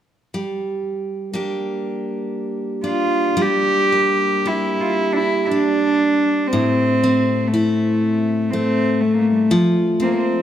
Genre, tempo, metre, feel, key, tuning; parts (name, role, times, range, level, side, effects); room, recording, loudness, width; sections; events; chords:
celtic folk, Celtic slow air; 59 BPM; 3/4; uneven beats, rubato; G dorian; A4 = 439 Hz
picked steel-string acoustic guitar; accompaniment; 0.3-10.4 s; A2 to G4; -20 LUFS; left 1 dB
rich cello; melody; 2.9-10.4 s; G3 to G4; -18 LUFS; right 1 dB
moderate concert hall reverb, RT60 2.3 s; -16 LUFS; side -10 dB against mid
0.3-3.4 A section; 3.4-10.4 B section
0.3 Gm; 6.5 Am; 9.5 F